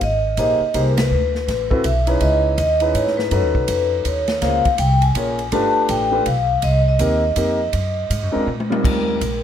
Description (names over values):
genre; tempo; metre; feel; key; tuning
jazz, small-group swing and bop; 163 BPM; 3/4; swing 63% on 8ths; unclear; A4 = 444 Hz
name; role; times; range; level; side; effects
vibraphone with medium hard mallets; melody; 0.0-9.4 s; Bb4 to A5; -20 LUFS; left 1 dB; none
upright bass; bass; 0.0-9.4 s; G1 to Bb2; -21 LUFS; right 1 dB; none
swinging big-band drum kit; drums; 0.0-9.3 s; crash cymbal, hi-hat, kick drum, ride cymbal, snare drum, toms; -26 LUFS; right 1 dB; none
warm concert grand piano; accompaniment; 0.4-9.2 s; G3 to Db5; -22 LUFS; equal; none
room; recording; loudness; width
light reverb; minimal, uncompressed stereo recording; -16 LUFS; side -9 dB against mid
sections
0.0-8.8 A section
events
band accent 0.9; drum fill 8.5-8.8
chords
0.0 Abmaj7; 1.1 Dsus2; 2.2 Dbm9; 3.3 B9; 4.4 Bbm9; 5.5 G7; 6.6 Cm7; 7.7 Gb9; 8.5 Bb5